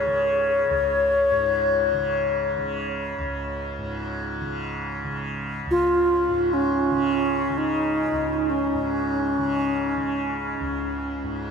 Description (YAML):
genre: world meditative, free-time meditation music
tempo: free time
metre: none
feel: none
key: unclear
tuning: A4 = 441 Hz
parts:
  - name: bright reedy wooden-headed alto flute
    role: melody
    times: 0.0-11.2 s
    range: Db4 to Db5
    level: -22 LUFS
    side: left 1 dB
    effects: ping-pong delay
  - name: tanpura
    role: drone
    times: 0.0-11.5 s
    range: Db2 to Db3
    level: -29 LUFS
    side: equal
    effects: none
room: wet huge ambient reverb, RT60 8.4 s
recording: dreamy mix soaked in reverb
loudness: -22 LUFS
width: side -6 dB against mid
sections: 0.0-11.5 A section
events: none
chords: none